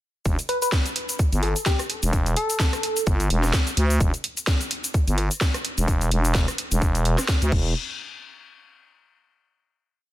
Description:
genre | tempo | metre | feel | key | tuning
bass house | 128 BPM | 4/4 | swing 56% on 16ths | E minor | A4 = 440 Hz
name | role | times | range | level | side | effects
growling FM bass | bass | 0.3-7.7 s | E1 to D2 | -22 LUFS | equal | overdrive, sidechain pumping
electronic kick drum | drums | 0.3-7.6 s | none | -22 LUFS | equal | overdrive, studio reverb
garage drum kit | drums | 0.3-7.6 s | cabasa, crash cymbal, hi-hat, rim click, snare drum | -27 LUFS | equal | overdrive, studio reverb
soft struck synth lead | melody | 0.5-3.0 s | G4 to B4 | -28 LUFS | left 1 dB | chorus, phaser, digital delay
room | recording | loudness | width
digital ambience | dense, heavily limited modern master | -20 LUFS | side -15 dB against mid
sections
0.3-7.8 drop; 7.8-9.6 final hit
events
drop 0.3-7.8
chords
0.3 Em; 7.5 N.C.

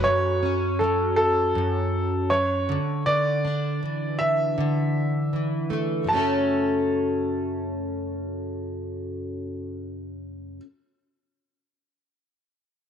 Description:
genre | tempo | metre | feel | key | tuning
pop | 80 BPM | 4/4 | swing 55% on 16ths | F# minor | A4 = 440 Hz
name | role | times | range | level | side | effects
bright upright piano | melody | 0.0-10.6 s | A4 to A5 | -25 LUFS | right 1 dB | none
picked plugged-in steel-string acoustic guitar | accompaniment | 0.0-10.6 s | F#2 to A4 | -25 LUFS | equal | double-tracked left and right
room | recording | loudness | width
moderate spring reverb, RT60 2.1 s | 1960s-style stereo | -22 LUFS | side -8 dB against mid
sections
0.1-6.1 A section; 6.1-9.1 B section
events
none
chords
0.1 F#m; 2.7 Dsus2; 6.1 F#m

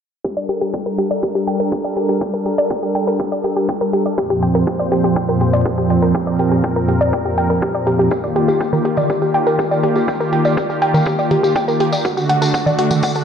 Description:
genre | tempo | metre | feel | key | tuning
melodic techno | 122 BPM | 4/4 | straight | G minor | A4 = 439 Hz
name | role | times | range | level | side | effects
warm analog pad | sustained chords | 0.2-13.2 s | F2 to C5 | -18 LUFS | equal | chorus, tremolo, sidechain pumping
woody wave-folded pluck | arpeggios | 0.2-13.2 s | F#4 to G5 | -18 LUFS | equal | chorus, sidechain pumping, analog delay
electronic kick drum | drums | 0.2-13.1 s | none | -26 LUFS | equal | overdrive, high-pass filter on kick, high-pass filter on room
electronic hi-hat and congas | drums | 0.5-13.0 s | none | -22 LUFS | right 3 dB | overdrive
tambourine | percussion | 8.1-13.2 s | none | -31 LUFS | left 3 dB | none
room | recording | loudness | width
wet lush hall reverb, RT60 2.4 s | dreamy mix soaked in reverb, low-pass filter | -15 LUFS | side -7 dB against mid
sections
0.2-13.2 A section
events
filter sweep on synth pluck 0.2-13.2; filter sweep 0.2-13.2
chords
0.2 Gm; 4.2 Bbsus2/F; 8.1 Eb; 12.0 D

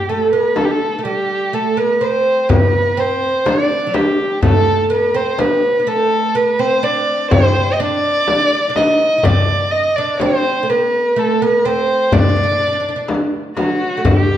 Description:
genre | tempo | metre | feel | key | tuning
Turkish makam ensemble | 125 BPM (eighths) | 10/8 | straight | D makam hicaz | A4 = 440 Hz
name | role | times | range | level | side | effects
dark violin | melody | 0.0-14.4 s | F#4 to Eb5 | -16 LUFS | equal | none
oud | second line | 0.0-14.4 s | F#3 to Eb4 | -20 LUFS | right 3 dB | none
darbuka | percussion | 0.6-14.3 s | none | -19 LUFS | left 2 dB | none
frame drum | percussion | 0.6-14.3 s | none | -19 LUFS | left 1 dB | none
room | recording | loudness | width
wet recital hall reverb, RT60 1.5 s | dark, warm production | -13 LUFS | side -11 dB against mid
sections
0.0-14.4 A section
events
none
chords
none

